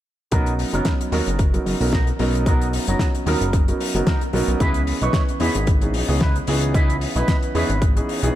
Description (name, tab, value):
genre	nu-disco, nu disco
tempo	112 BPM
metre	4/4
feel	swing 55% on 16ths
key	B major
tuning	A4 = 440 Hz
part	warm grand piano	accompaniment	0.3-8.3 s	E3 to D#5	-24 LUFS	right 1 dB	sidechain pumping, tape echo
part	electric guitar with an envelope filter	riff	0.3-8.3 s	B3 to C#5	-28 LUFS	right 2 dB	analog chorus, low-pass filter, tape echo
part	fat analog bass	bass	0.3-8.3 s	F#1 to E2	-22 LUFS	equal	none
part	damped 70s drum kit	drums	0.3-8.3 s	hi-hat, snare drum	-27 LUFS	left 2 dB	small room ambience, tape echo
part	electronic kick drum	drums	0.3-7.9 s	none	-20 LUFS	equal	small room ambience
room	light reverb, small room ambience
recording	echo-heavy mix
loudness	-18 LUFS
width	side -13 dB against mid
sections	0.3-8.4 A section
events	filter sweep on clean electric guitar 0.3-8.4; clean electric guitar fill 8.1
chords	0.3 Bmaj7; 4.6 C#m9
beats	| 0.32 0.86 1.39 1.93 | 2.46 3.00 3.53 4.07 | 4.61 5.14 5.68 6.21 | 6.75 7.28 7.82